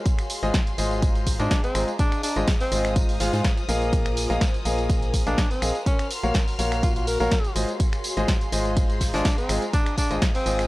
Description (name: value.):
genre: piano house.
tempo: 124 BPM.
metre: 4/4.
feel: swing 54% on 16ths.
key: unclear.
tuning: A4 = 440 Hz.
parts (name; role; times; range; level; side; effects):
warm chamber violin section; sustained chords; 0.0-10.7 s; Gb4 to F6; -36 LUFS; left 2 dB; sidechain pumping.
granular cloud pad; texture; 0.0-10.7 s; F4 to C6; -36 LUFS; equal; built-in reverb, sidechain pumping.
electronic kick drum; drums; 0.1-10.3 s; none; -23 LUFS; equal; none.
punchy analog drum machine; drums; 0.1-10.7 s; finger snaps, hi-hat, snare drum, tambourine; -30 LUFS; equal; none.
soft brush drum kit; drums; 0.1-10.7 s; hi-hat, ride cymbal, snare drum; -41 LUFS; left 1 dB; none.
clear concert grand piano; riff; 0.4-10.7 s; Ab3 to F5; -28 LUFS; left 1 dB; sidechain pumping.
organ-like FM bass; bass; 0.4-10.7 s; Ab1 to Ab2; -27 LUFS; equal; sidechain pumping.
breathy tenor saxophone; melody; 1.4-10.7 s; C4 to Bb4; -29 LUFS; equal; analog delay.
room: little or no reverb.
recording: transformer saturation.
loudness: -21 LUFS.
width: side -19 dB against mid.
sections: 0.0-10.7 A section.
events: none.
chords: 0.0 Ab6; 3.9 Bb7sus4; 5.9 Gbmaj7/Bb; 7.6 Ab6.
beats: | 0.06 0.54 1.02 1.51 | 1.99 2.48 2.96 3.44 | 3.93 4.41 4.90 5.38 | 5.86 6.35 6.83 7.32 | 7.80 8.28 8.77 9.25 | 9.73 10.22.